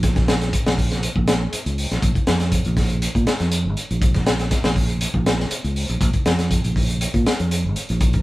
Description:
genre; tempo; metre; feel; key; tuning
afrobeat; 120 BPM; 4/4; straight; Bb minor; A4 = 440 Hz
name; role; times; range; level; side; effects
fingered electric bass; bass; 0.0-8.2 s; Ab1 to Bb2; -21 LUFS; right 1 dB; none
crunchy breakbeat drum kit; drums; 0.0-8.2 s; hi-hat, kick drum, snare drum; -20 LUFS; equal; none
room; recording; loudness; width
light reverb; band playing live in one room; -18 LUFS; side -18 dB against mid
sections
0.0-8.2 A section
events
none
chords
none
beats
| 0.03 0.53 1.03 1.52 | 2.02 2.52 3.02 3.52 | 4.01 4.51 5.01 5.51 | 6.01 6.51 7.01 7.51 | 8.01

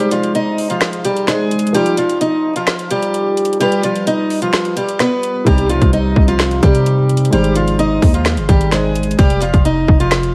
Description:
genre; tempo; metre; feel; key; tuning
hip hop, trap; 129 BPM; 4/4; half-time; unclear; A4 = 442 Hz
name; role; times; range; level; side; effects
picked acoustic archtop guitar; melody; 0.0-10.3 s; F3 to Eb5; -19 LUFS; equal; delay
felt-muted upright piano; accompaniment; 0.0-9.2 s; C3 to C5; -22 LUFS; equal; none
trap drum kit; drums; 0.0-10.3 s; finger snaps, hi-hat, kick drum, snare drum; -18 LUFS; equal; none
growling 808-style bass; bass; 5.5-10.3 s; F1 to C3; -18 LUFS; equal; none
room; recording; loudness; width
light reverb; vinyl crackle, lossy compression artefacts; -15 LUFS; mono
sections
0.0-10.3 A section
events
break 0.0-5.5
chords
0.0 Ab; 1.7 Ebadd9/F; 3.6 G7; 5.5 Cm; 7.3 Ab; 9.2 Ebadd9/F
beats
0.35 0.81 1.28 | 1.75 2.21 2.67 3.14 | 3.60 4.07 4.54 5.00 | 5.47 5.93 6.40 6.86 | 7.33 7.79 8.26 8.72 | 9.19 9.65 10.12

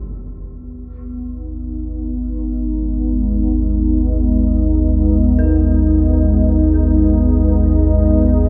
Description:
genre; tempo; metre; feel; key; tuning
dark ambient drone; free time; none; none; G# harmonic minor; A4 = 440 Hz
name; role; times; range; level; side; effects
dark analog pad; sustained chords; 0.7-8.5 s; G#3 to D#5; -20 LUFS; equal; chorus
dark detuned synth bell; arpeggios; 0.0-8.5 s; D#4 to A#4; -41 LUFS; equal; chorus, diffuse ambient delay
deep rumbling drone; drone; 0.6-8.5 s; G#1 to D#2; -18 LUFS; equal; built-in reverb, lush chorus
room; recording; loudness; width
light reverb; none; -16 LUFS; mono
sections
0.0-8.5 A section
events
fade-in on synth bell 0.0-8.5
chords
0.0 G#m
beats
free time

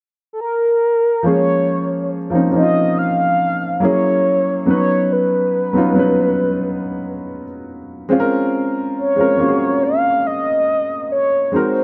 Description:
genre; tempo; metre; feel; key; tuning
R&B; 70 BPM; 4/4; straight; Bb minor; A4 = 440 Hz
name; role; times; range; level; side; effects
mellow horn-like synth lead; melody; 0.3-11.8 s; A4 to F5; -19 LUFS; equal; chorus, delay
warm baby grand piano; accompaniment; 1.2-11.8 s; F3 to B4; -20 LUFS; equal; none
room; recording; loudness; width
light reverb; none; -17 LUFS; mono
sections
0.0-1.3 A section; 1.3-11.8 B section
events
none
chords
0.0 N.C.; 1.3 Bbm9; 3.8 Gb7; 4.7 Badd9; 8.1 Bbm9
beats
0.40 | 1.25 2.11 2.97 3.82 | 4.68 5.54 6.39 7.25 | 8.11 8.97 9.82 10.68 | 11.54

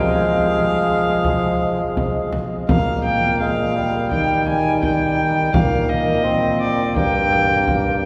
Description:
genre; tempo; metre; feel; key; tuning
classical, renaissance-style consort dance; 84 BPM; 4/4; straight; unclear; A4 = 441 Hz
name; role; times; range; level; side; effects
dark violin; melody; 0.0-8.0 s; D5 to Ab5; -24 LUFS; equal; none
warm bassoon; accompaniment; 0.0-8.1 s; G3 to C4; -24 LUFS; equal; none
warm trombone; bass; 0.0-8.1 s; G2 to F3; -24 LUFS; equal; none
frame drum; percussion; 1.2-8.0 s; none; -26 LUFS; equal; none
room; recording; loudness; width
wet cathedral reverb, RT60 5.4 s; heard from further back in the room; -19 LUFS; mono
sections
0.0-2.7 A section; 2.7-8.1 B section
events
none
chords
0.0 Fm; 2.7 Bb5; 4.1 Eb; 5.5 Bbadd9; 7.0 Gm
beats
0.52 1.25 1.97 | 2.69 3.40 4.12 4.83 | 5.54 6.25 6.97 7.68

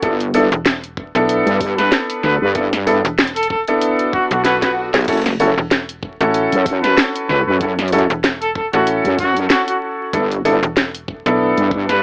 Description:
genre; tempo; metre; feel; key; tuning
glitch hop; 95 BPM; 4/4; swing 56% on 16ths; unclear; A4 = 442 Hz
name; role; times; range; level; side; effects
clear concert grand piano; stabs; 0.0-12.0 s; B3 to A4; -17 LUFS; equal; sidechain pumping, tape echo
wobble bass; bass; 0.0-12.0 s; F#1 to G2; -18 LUFS; equal; chorus, tube saturation
drum and bass drum kit; drums; 0.0-12.0 s; crash cymbal, hi-hat, snare drum; -17 LUFS; equal; none
electronic kick drum; drums; 0.0-11.9 s; none; -26 LUFS; equal; none
slap-like FM bass; bass; 0.5-11.5 s; E1 to B1; -22 LUFS; equal; none
clear trumpet; melody; 1.8-12.0 s; F#4 to B4; -19 LUFS; equal; vintage 12-bit sampler grit, tape echo
swell; sound effects; 4.1-5.1 s; none; -23 LUFS; equal; none
room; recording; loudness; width
light reverb; vinyl crackle, AM radio sound; -14 LUFS; side -38 dB against mid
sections
0.0-12.0 A section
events
swell 4.1-5.1; drum fill 4.5-5.1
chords
0.0 G6; 5.1 F#m7; 10.1 G6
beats
| 0.03 0.66 1.29 1.92 | 2.56 3.19 3.82 4.45 | 5.08 5.71 6.34 6.98 | 7.61 8.24 8.87 9.50 | 10.13 10.77 11.40 12.03

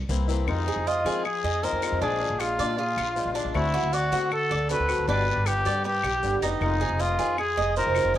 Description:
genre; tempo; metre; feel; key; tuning
latin, Cuban son and guajira; 156 BPM; 4/4; straight; unclear; A4 = 440 Hz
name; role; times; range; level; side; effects
upright bass; bass; 0.0-8.2 s; F1 to F3; -29 LUFS; equal; none
picked swing-style acoustic guitar; accompaniment; 0.1-8.2 s; B2 to G4; -32 LUFS; left 7 dB; cassette tape
guiro; percussion; 0.1-8.2 s; none; -40 LUFS; left 10 dB; none
breathy trumpet; melody; 0.5-8.2 s; Eb4 to B4; -26 LUFS; left 1 dB; cassette tape
claves; percussion; 0.5-8.1 s; none; -37 LUFS; left 8 dB; none
Cuban tres; arpeggios; 0.7-8.2 s; D4 to Eb5; -29 LUFS; right 7 dB; cassette tape
room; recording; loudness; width
light reverb, small room ambience; home recording on cassette; -23 LUFS; side -12 dB against mid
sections
0.5-8.2 A section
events
none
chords
0.5 Fm7; 2.0 Bb7; 3.5 D7; 5.1 G; 6.6 Fm7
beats
0.10 | 0.48 0.86 1.25 1.63 | 2.01 2.40 2.78 3.17 | 3.55 3.93 4.32 4.70 | 5.08 5.46 5.85 6.23 | 6.62 7.00 7.38 7.76 | 8.15

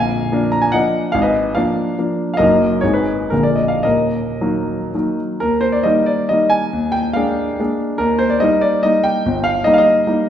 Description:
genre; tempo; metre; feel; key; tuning
classical, romantic triple-time dance for piano with dotted rhythms; 106-159 BPM; 3/4; rubato; Eb minor, Eb major from 5.4 s; A4 = 440 Hz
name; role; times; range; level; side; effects
warm concert grand piano; solo; 0.0-10.3 s; Bb0 to Bb5; -14 LUFS; equal; none
room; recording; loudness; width
wet recital hall reverb, RT60 1.4 s; heard from further back in the room; -14 LUFS; side -10 dB against mid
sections
0.0-5.4 A section; 5.4-10.3 B section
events
none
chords
0.0 Bb; 1.1 Bb7/Ab; 2.4 Ebm/Gb; 2.8 Abm; 3.3 Bb7; 3.8 Ebm; 5.4 Eb; 6.7 Bb7/Eb; 8.0 Eb; 9.3 Eb/G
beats
0.32 0.74 | 1.14 1.55 1.97 | 2.39 2.83 3.31 | 3.84 4.40 4.93 | 5.42 5.85 6.30 | 6.72 7.16 7.60 | 8.00 8.42 8.85 | 9.25 9.67 10.07

